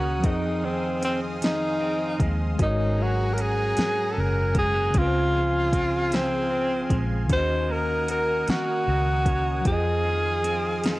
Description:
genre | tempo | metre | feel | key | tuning
slow six-eight R&B | 51 BPM (dotted quarters) | 6/8 | straight | unclear | A4 = 440 Hz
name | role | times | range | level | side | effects
breathy tenor saxophone | melody | 0.0-11.0 s | C4 to C5 | -25 LUFS | equal | none
electric guitar at the edge of break-up | second line | 0.0-11.0 s | F2 to Gb4 | -34 LUFS | right 3 dB | ensemble chorus
mellow tine electric piano | accompaniment | 0.0-11.0 s | Db3 to Eb5 | -31 LUFS | left 1 dB | medium stereo tremolo
lush unison pad | sustained chords | 0.0-11.0 s | Ab4 to Eb6 | -35 LUFS | equal | chorus
vintage muted fingered electric bass | bass | 0.0-11.0 s | Gb1 to F2 | -27 LUFS | equal | tube saturation
smooth R&B drum kit | drums | 0.2-11.0 s | hi-hat, kick drum, snare drum | -25 LUFS | equal | overdrive
room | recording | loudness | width
digital ambience | worn, warbling old tape, cassette tape, warbly pitch drift | -22 LUFS | side -18 dB against mid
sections
0.0-11.0 A section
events
none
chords
0.2 Fm7; 2.6 Ab9sus4; 4.9 Dbmaj7; 7.3 Ebm7; 9.7 Fm7

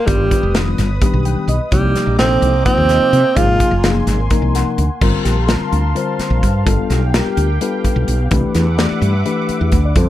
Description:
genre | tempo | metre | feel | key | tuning
electric jazz fusion | 255 BPM (eighths) | 7/8 | straight | G minor | A4 = 440 Hz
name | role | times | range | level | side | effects
breathy tenor saxophone | melody | 0.0-3.9 s | G3 to F4 | -16 LUFS | right 2 dB | slapback echo, plate reverb
lush unison pad | sustained chords | 0.0-10.1 s | Bb3 to Eb6 | -26 LUFS | left 1 dB | chorus, phaser, plate reverb
reed electric piano | accompaniment | 0.1-10.1 s | C3 to G5 | -20 LUFS | left 4 dB | plate reverb
woody fretless electric bass | bass | 0.1-10.1 s | F1 to C3 | -16 LUFS | equal | analog chorus
modern studio drum kit | drums | 0.1-10.1 s | crash cymbal, hi-hat, kick drum, snare drum | -18 LUFS | equal | none
room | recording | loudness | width
light reverb | dark, warm production | -13 LUFS | side -13 dB against mid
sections
0.0-5.0 A section; 5.0-10.1 B section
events
reed electric piano fill 1.0-1.7, 4.3-5.0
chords
0.1 G7b13; 1.7 Cm11; 3.4 Ab13; 5.0 Gm11; 6.7 G7; 8.3 Cmaj9#11 (rootless)

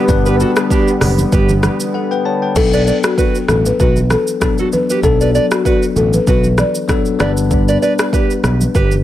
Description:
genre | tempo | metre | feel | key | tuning
afrobeats | 97 BPM | 4/4 | swing 55% on 16ths | B minor | A4 = 440 Hz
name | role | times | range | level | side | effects
bell-like tine electric piano | accompaniment | 0.0-9.0 s | F#3 to A5 | -18 LUFS | left 5 dB | analog delay
warm analog pad | sustained chords | 0.0-2.5 s | D3 to B3 | -23 LUFS | right 2 dB | chorus, tremolo
nylon-string guitar | riff | 0.0-8.9 s | D4 to D5 | -19 LUFS | right 3 dB | analog delay
fingered electric bass | bass | 0.1-9.0 s | F#1 to B1 | -16 LUFS | equal | none
afro-pop drum kit | drums | 0.1-9.0 s | crash cymbal, hi-hat, kick drum, rim click, shaker | -17 LUFS | equal | none
congas | percussion | 0.1-9.0 s | none | -25 LUFS | right 2 dB | none
buzzing marimba with medium mallets | melody | 2.6-6.7 s | F#4 to D5 | -17 LUFS | left 2 dB | analog delay
room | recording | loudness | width
light reverb | echo-heavy mix | -12 LUFS | side -13 dB against mid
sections
0.0-2.6 A section; 2.6-9.0 B section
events
break 1.9-2.6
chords
0.0 G; 2.6 Bm7; 7.2 G

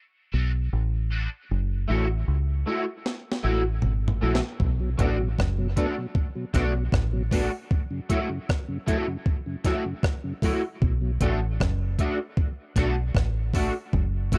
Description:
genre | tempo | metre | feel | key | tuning
dub reggae | 77 BPM | 4/4 | straight | B dorian | A4 = 440 Hz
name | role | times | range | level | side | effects
electric guitar at the edge of break-up | accompaniment | 0.3-14.4 s | A3 to F#4 | -32 LUFS | equal | ensemble chorus, high-pass filter, dub echo
deep dub fingered electric bass | bass | 0.3-14.4 s | F#1 to C#2 | -27 LUFS | equal | none
breakbeat sampler-style drum kit | drums | 3.1-14.4 s | hi-hat, kick drum, rim click, snare drum, toms | -28 LUFS | equal | none
mellow tonewheel organ | accompaniment | 4.8-11.1 s | F#2 to E4 | -34 LUFS | equal | chorus vibrato, slow rotary speaker, high-pass filter
room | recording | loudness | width
digital ambience | dry, close 1970s-style studio recording | -26 LUFS | mono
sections
0.0-14.4 A section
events
break 0.0-4.6; drum fill 3.0-4.6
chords
0.0 Bm7; 1.5 F#m7; 4.6 Bm7; 7.7 F#m7; 10.8 Bm7

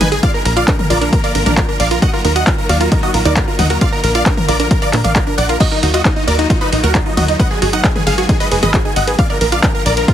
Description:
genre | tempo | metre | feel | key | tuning
uplifting trance | 134 BPM | 4/4 | straight | Eb harmonic minor | A4 = 440 Hz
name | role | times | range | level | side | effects
big supersaw lead | melody | 0.0-10.1 s | D4 to Ab5 | -19 LUFS | right 1 dB | phaser, sidechain pumping, dub echo
wide unison pluck | second line | 0.0-10.1 s | Eb4 to Ab5 | -24 LUFS | moving between left 3 dB and right 4 dB | auto-pan, sidechain pumping, dub echo
clear chamber string section | sustained chords | 0.0-10.1 s | D3 to Bb4 | -24 LUFS | left 1 dB | sidechain pumping
wide unison pluck | arpeggios | 0.0-10.1 s | D4 to Bb5 | -22 LUFS | right 3 dB | sidechain pumping, dub echo
tight sequencer bass | bass | 0.0-10.0 s | Gb1 to Bb2 | -18 LUFS | equal | sidechain pumping
punchy analog drum machine | drums | 0.0-10.1 s | crash cymbal, handclaps, hi-hat, ride cymbal, toms | -20 LUFS | equal | sidechain pumping on hats, sidechain pumping on cymbals, sidechain pumping on toms
electronic kick drum | drums | 0.2-10.1 s | none | -15 LUFS | equal | none
room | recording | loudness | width
little or no reverb | heavily compressed radio sound, multiband compression | -12 LUFS | side -10 dB against mid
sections
0.0-5.6 A section; 5.6-10.1 A section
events
drop 0.0-5.6, 5.6-10.1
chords
0.2 Bb; 2.0 Ebmadd9; 3.8 Bb; 5.6 Ebmadd9; 7.4 Abm7; 9.2 Bb

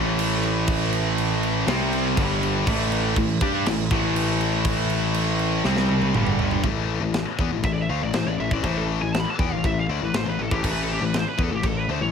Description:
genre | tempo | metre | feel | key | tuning
heavy metal | 121 BPM | 4/4 | straight | A minor | A4 = 440 Hz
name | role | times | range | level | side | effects
heavy high-gain guitar | riff | 0.0-12.1 s | G2 to G4 | -26 LUFS | left 12 dB | distortion
overdriven semi-hollow guitar | riff | 0.0-6.6 s | G2 to G4 | -27 LUFS | right 2 dB | none
tight distorted guitar | riff | 0.0-6.6 s | G2 to G4 | -28 LUFS | right 14 dB | distortion
fuzz picked electric bass | bass | 0.0-12.1 s | G1 to G2 | -27 LUFS | equal | overdrive
tight metal drum kit | drums | 0.2-11.8 s | china cymbal, crash cymbal, kick drum, snare drum, toms | -27 LUFS | right 1 dB | none
high-gain lead guitar | melody | 7.6-12.1 s | G4 to B5 | -28 LUFS | equal | distortion
room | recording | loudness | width
studio reverb | none | -20 LUFS | side -6 dB against mid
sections
0.0-6.6 A section; 6.6-12.1 B section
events
half time 0.0-6.6; drum fill 5.7-6.6; lead electric guitar solo 6.6-12.1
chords
0.0 A5; 1.7 C5; 2.2 G5; 2.7 A5; 5.7 C5; 6.2 G5; 6.6 A5

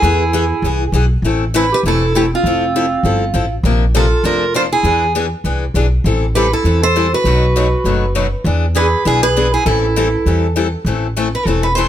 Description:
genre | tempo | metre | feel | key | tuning
acoustic string swing (jazz manouche) | 199 BPM | 4/4 | swing 58% on 8ths | A minor | A4 = 440 Hz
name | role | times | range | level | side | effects
picked steel-string acoustic guitar | melody | 0.0-11.9 s | F4 to C5 | -17 LUFS | right 2 dB | none
growling clarinet | second line | 0.0-10.5 s | C4 to A4 | -21 LUFS | right 5 dB | none
picked steel-string acoustic guitar | accompaniment | 0.0-11.9 s | B2 to Bb4 | -19 LUFS | left 5 dB | none
upright bass | bass | 0.0-11.9 s | E1 to E2 | -16 LUFS | equal | none
room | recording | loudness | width
light reverb | none | -13 LUFS | side -11 dB against mid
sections
0.0-1.2 A section; 1.2-10.9 B section; 10.9-11.9 C section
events
steel-string acoustic guitar solo 10.9-11.9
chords
0.0 E; 1.2 Am; 2.4 Fmaj7; 3.6 Bbadd9; 4.8 E7; 6.0 Am7; 7.2 B7; 8.5 E7; 9.7 Am7; 10.9 Am

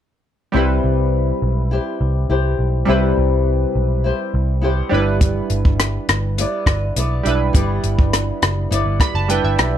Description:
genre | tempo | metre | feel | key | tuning
indie pop, bedroom pop | 103 BPM | 4/4 | straight | unclear | A4 = 442 Hz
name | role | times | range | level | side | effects
chorused retro synth keys | accompaniment | 0.5-9.8 s | G3 to B5 | -23 LUFS | right 5 dB | none
flamenco guitar | accompaniment | 0.5-9.8 s | C3 to D5 | -22 LUFS | left 5 dB | lush chorus, vibrato effect
vintage muted picked electric bass | bass | 0.5-9.8 s | F#1 to C2 | -19 LUFS | equal | none
compact cocktail drum kit | drums | 5.2-9.7 s | hi-hat, kick drum, rim click | -17 LUFS | equal | none
room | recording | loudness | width
little or no reverb | none | -16 LUFS | side -10 dB against mid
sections
0.6-9.8 A section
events
synth keys fill 8.7-9.8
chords
0.6 Cmaj7; 4.9 G6

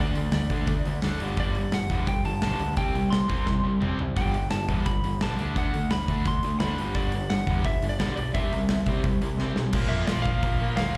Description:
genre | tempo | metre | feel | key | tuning
punk rock | 172 BPM | 4/4 | straight | unclear | A4 = 440 Hz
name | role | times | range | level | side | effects
lightly driven lead guitar | melody | 0.0-11.0 s | D5 to C6 | -35 LUFS | equal | slapback echo
raw garage guitar | riff | 0.0-11.0 s | G2 to D4 | -36 LUFS | equal | overdrive, slapback echo
tight distorted guitar | riff | 0.0-11.0 s | G2 to D4 | -34 LUFS | equal | distortion, slapback echo
growling picked electric bass | bass | 0.0-11.0 s | G1 to F2 | -32 LUFS | equal | overdrive
big rock drum kit | drums | 0.2-11.0 s | crash cymbal, hi-hat, kick drum, snare drum, toms | -30 LUFS | equal | none
room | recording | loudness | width
light reverb | live gig heard through the venue's PA, club reverb | -26 LUFS | mono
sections
0.0-9.7 A section; 9.7-11.0 B section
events
drum fill 3.5-4.2, 9.4-9.7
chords
0.0 D5; 1.2 G5; 2.8 C5; 4.2 G; 5.4 D; 6.8 G; 8.4 C; 9.7 Bb5

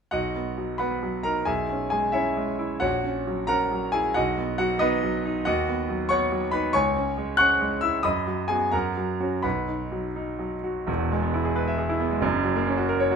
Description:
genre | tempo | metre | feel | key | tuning
classical, virtuoso piano study | 82-94 BPM (dotted quarters) | 6/8 | rubato | B major | A4 = 440 Hz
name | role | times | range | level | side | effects
bright concert grand piano | solo | 0.1-13.2 s | E1 to F#6 | -23 LUFS | equal | none
room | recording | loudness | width
moderate stone room reverb, RT60 1.4 s | minimal, uncompressed stereo recording | -23 LUFS | side -6 dB against mid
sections
0.1-10.9 A section; 10.9-13.2 B section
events
none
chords
0.1 B; 1.5 C#m7/B; 2.8 F#7/A#; 4.2 B; 5.5 B/D#; 6.8 C#m; 8.1 B/F#; 8.7 F#; 9.4 B; 10.9 E; 12.2 F#

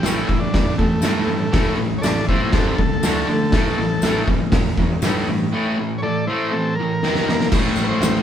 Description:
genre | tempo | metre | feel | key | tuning
garage rock duo or trio | 120 BPM | 4/4 | straight | A minor | A4 = 441 Hz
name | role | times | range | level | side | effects
combo organ | melody | 0.0-8.2 s | A3 to D5 | -24 LUFS | equal | none
fuzz guitar | riff | 0.0-8.2 s | G2 to D#4 | -21 LUFS | equal | distortion
modern bright picked electric bass | bass | 0.0-8.2 s | G1 to D3 | -26 LUFS | equal | none
oversized low-tuned drum kit | drums | 0.0-8.1 s | crash cymbal, hi-hat, kick drum, snare drum | -20 LUFS | equal | none
tambourine | percussion | 0.1-8.2 s | none | -34 LUFS | left 6 dB | none
room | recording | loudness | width
light reverb | band playing live in one room | -17 LUFS | side -9 dB against mid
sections
0.0-7.5 A section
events
transistor combo organ solo 0.0-7.5; drum fill 7.0-7.5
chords
0.0 A5; 2.5 G5; 3.0 D5; 3.5 A5; 7.0 D#5; 7.5 A5

